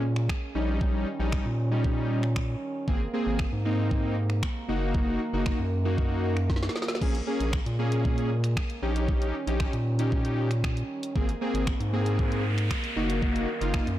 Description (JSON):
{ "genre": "dance-pop", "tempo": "116 BPM", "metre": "4/4", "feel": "straight", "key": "unclear", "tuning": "A4 = 440 Hz", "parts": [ { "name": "big bright polysynth", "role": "accompaniment", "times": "0.0-13.9 s", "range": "G3 to Ab4", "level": "-31 LUFS", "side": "left 1 dB", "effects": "sidechain pumping" }, { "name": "mellow French horn section", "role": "sustained chords", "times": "0.0-14.0 s", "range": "C3 to Db4", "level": "-36 LUFS", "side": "right 2 dB", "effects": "sidechain pumping" }, { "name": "round analog bass", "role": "bass", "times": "0.0-14.0 s", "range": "Gb1 to Bb2", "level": "-28 LUFS", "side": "equal", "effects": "sidechain pumping" }, { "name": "smooth R&B drum kit", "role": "drums", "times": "0.2-14.0 s", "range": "crash cymbal, finger snaps, hi-hat, kick drum, snare drum", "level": "-30 LUFS", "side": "equal", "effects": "soft clipping on snare" }, { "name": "noise sweep", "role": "sound effects", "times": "11.6-14.0 s", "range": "none", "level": "-36 LUFS", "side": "equal", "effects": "none" } ], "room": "light reverb, digital ambience", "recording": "blown-out, overdriven recording, overdrive", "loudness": "-25 LUFS", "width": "side -13 dB against mid", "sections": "0.0-14.0 A section", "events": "drum fill 6.5-7.0; noise sweep 11.6-14.0", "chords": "0.0 Bbm7; 0.6 Eb7/Bb; 2.9 Abadd9; 4.7 Ebm/Gb; 7.0 Bbm7; 8.8 Eb7/Bb; 11.2 Abadd9; 13.0 Ebm/Gb", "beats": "0.29 | 0.81 1.33 1.84 2.36 | 2.88 3.40 3.91 4.43 | 4.95 5.46 5.98 6.50 | 7.02 7.53 8.05 8.57 | 9.09 9.60 10.12 10.64 | 11.15 11.67 12.19 12.71 | 13.22 13.74" }